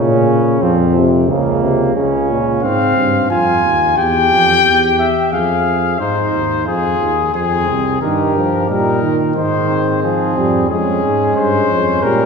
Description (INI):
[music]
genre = classical, imitative canzona for brass ensemble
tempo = 89 BPM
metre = 4/4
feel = straight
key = Bb minor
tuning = A4 = 440 Hz
[part]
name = mellow flugelhorn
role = second line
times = 0.0-12.3 s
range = Bb3 to Ab4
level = -19 LUFS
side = right 3 dB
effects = none
[part]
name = clear trombone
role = accompaniment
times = 0.0-2.6, 8.0-12.3 s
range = Bb2 to Ab3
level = -18 LUFS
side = right 1 dB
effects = none
[part]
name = warm tuba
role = bass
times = 0.0-12.3 s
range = C2 to Bb2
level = -18 LUFS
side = equal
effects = none
[part]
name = mellow trumpet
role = melody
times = 2.6-12.3 s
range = Ab4 to Ab5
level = -16 LUFS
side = left 5 dB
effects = none
[sound]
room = wet concert hall reverb, RT60 2.0 s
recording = heard from further back in the room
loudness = -12 LUFS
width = side -5 dB against mid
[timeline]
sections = 0.0-8.0 A section; 8.0-12.3 B section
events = none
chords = 0.0 Bbm; 1.3 Bbm/Db; 2.6 Fm; 4.0 Em; 5.3 Fm; 8.0 Eb/G; 9.4 Ab; 10.7 Db/F